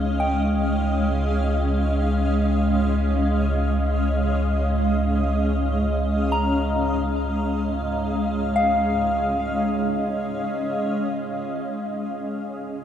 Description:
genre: ambient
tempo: free time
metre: none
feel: none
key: Db lydian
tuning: A4 = 440 Hz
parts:
  - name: granular cloud pad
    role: sustained chords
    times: 0.0-12.8 s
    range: Ab3 to F5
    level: -23 LUFS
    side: equal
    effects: built-in reverb
  - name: soft synth bell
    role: arpeggios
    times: 0.0-11.4 s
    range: F5 to Bb5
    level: -28 LUFS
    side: left 2 dB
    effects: chorus, phaser, tape echo
  - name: deep rumbling drone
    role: bass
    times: 0.0-12.8 s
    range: Db2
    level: -24 LUFS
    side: equal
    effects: built-in reverb
room: wet huge ambient reverb, RT60 8.1 s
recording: dark, warm production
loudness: -20 LUFS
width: side -9 dB against mid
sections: 0.0-11.3 A section; 11.3-12.8 B section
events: none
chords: 0.0 Dbadd9; 11.3 Dbmaj9

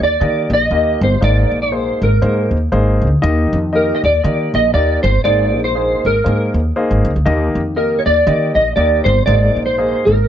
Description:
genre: uptempo 1960s-style soul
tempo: 119 BPM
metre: 4/4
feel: swing 58% on 8ths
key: Eb major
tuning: A4 = 440 Hz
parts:
  - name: mellow electric guitar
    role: melody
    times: 0.0-10.3 s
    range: Bb4 to Eb5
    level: -15 LUFS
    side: right 1 dB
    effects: ensemble chorus
  - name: dark grand piano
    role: accompaniment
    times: 0.0-10.1 s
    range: Ab2 to Eb5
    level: -20 LUFS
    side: left 2 dB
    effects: none
  - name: upright bass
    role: bass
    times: 0.0-10.2 s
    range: G1 to Eb3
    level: -16 LUFS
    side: equal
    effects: none
room: light reverb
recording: nothing above 7.9 kHz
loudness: -12 LUFS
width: side -10 dB against mid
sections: 0.0-10.3 A section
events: none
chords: 0.0 Eb; 1.2 Abadd9; 3.2 Eb; 5.2 Abadd9; 7.3 Eb; 9.3 Abadd9

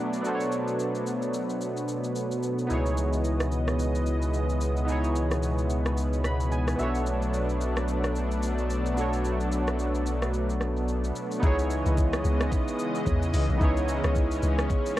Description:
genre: amapiano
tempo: 110 BPM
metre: 4/4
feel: swing 58% on 16ths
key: unclear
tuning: A4 = 440 Hz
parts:
  - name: warm analog keys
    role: accompaniment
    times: 0.0-15.0 s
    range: B3 to B5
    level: -31 LUFS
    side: right 1 dB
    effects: chorus, cassette tape
  - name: lush unison pad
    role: sustained chords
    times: 0.0-15.0 s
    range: B2 to D#5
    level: -30 LUFS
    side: equal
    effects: chorus, sidechain pumping, cassette tape
  - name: smooth R&B drum kit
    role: drums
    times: 0.1-15.0 s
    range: hi-hat, kick drum, rim click, shaker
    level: -31 LUFS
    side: equal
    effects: cassette tape
  - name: sub bass with octave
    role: bass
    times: 2.7-11.1 s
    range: B1 to C#2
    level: -28 LUFS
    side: equal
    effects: none
  - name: deep log drum bass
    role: bass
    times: 11.4-14.7 s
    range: B1 to E2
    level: -26 LUFS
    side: equal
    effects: none
room: light reverb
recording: home recording on cassette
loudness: -24 LUFS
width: side -14 dB against mid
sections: 0.0-11.4 A section; 11.4-15.0 B section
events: synth keys fill 6.0-7.1; kick muted 10.3-11.4; drop 11.4-15.0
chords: 0.0 Bm9; 2.7 C#m9; 6.8 Bm9; 11.4 C#m9

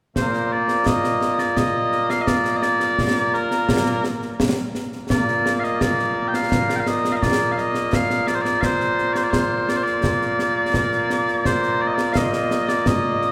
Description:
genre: scottish traditional, Scottish pipe music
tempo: 85 BPM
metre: 4/4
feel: straight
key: Bb major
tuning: A4 = 440 Hz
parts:
  - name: mellow small bagpipes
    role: melody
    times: 0.2-13.3 s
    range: Bb2 to G5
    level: -22 LUFS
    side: equal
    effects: none
  - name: concert snare drum and concert bass drum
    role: drums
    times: 0.2-13.3 s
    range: none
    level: -26 LUFS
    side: equal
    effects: none
room: wet church reverb, RT60 3.3 s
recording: recorded in a church or concert hall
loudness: -21 LUFS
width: mono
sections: 0.2-13.3 A section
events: none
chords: none

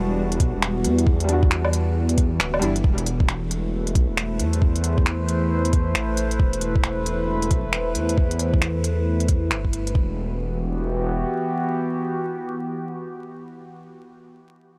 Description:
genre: future garage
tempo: 135 BPM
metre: 4/4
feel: swing 62% on 16ths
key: E minor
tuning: A4 = 438 Hz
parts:
  - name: felt-muted upright piano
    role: accompaniment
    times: 0.0-2.7 s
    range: G3 to F#4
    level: -32 LUFS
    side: equal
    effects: sidechain pumping, analog delay
  - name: warbly tape-like pad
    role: sustained chords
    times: 0.0-14.2 s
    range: E3 to C5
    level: -29 LUFS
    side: equal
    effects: chorus, built-in reverb, phaser, vintage 12-bit sampler grit, sidechain pumping
  - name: swelling detuned saw bass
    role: bass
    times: 0.0-11.2 s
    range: D1 to E2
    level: -26 LUFS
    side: equal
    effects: none
  - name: organic electronic drum kit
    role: drums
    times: 0.3-9.9 s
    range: finger snaps, hi-hat, woodblock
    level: -28 LUFS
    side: equal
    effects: none
  - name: electronic kick drum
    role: drums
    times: 0.4-10.1 s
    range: none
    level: -22 LUFS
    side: equal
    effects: none
room: light reverb, digital ambience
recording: dry, gritty hardware recording, vinyl crackle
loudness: -22 LUFS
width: mono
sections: 0.0-10.0 A section; 10.0-13.5 B section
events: filter sweep on detuned saw bass 0.0-10.0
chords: 0.0 Em7; 2.8 Amadd9/E; 10.0 Em

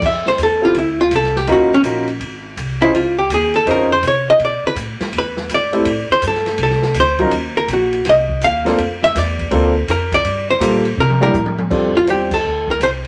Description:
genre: jazz, small-group swing and bop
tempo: 164 BPM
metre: 4/4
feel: swing 65% on 8ths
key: F major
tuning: A4 = 439 Hz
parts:
  - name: archtop guitar, miked and amplified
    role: melody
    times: 0.0-12.9 s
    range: Db4 to F5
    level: -17 LUFS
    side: equal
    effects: none
  - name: upright bass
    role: bass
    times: 0.0-13.1 s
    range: Ab1 to C3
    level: -26 LUFS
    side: equal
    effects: none
  - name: open jazz drum kit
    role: drums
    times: 0.0-13.1 s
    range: crash cymbal, hi-hat, kick drum, ride cymbal, snare drum, toms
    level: -28 LUFS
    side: equal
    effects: none
  - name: warm concert grand piano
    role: accompaniment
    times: 0.6-12.3 s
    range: Gb3 to C5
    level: -20 LUFS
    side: equal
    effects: none
room: wet studio reverb, RT60 0.6 s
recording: none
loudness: -16 LUFS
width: mono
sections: 0.0-11.7 A section; 11.7-13.1 B section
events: hollow-body jazz guitar solo 0.0-11.7; drum fill 11.0-11.7; band accent 12.3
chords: 0.0 Fmaj7; 1.5 Ebm7; 2.2 Ab; 2.9 Dbmaj7; 4.4 Asus24; 5.1 E7b13; 5.9 Am7; 7.3 Ebm; 8.1 Cm11; 8.8 Bbmaj7; 10.2 Gm7; 11.0 C13; 11.7 F6

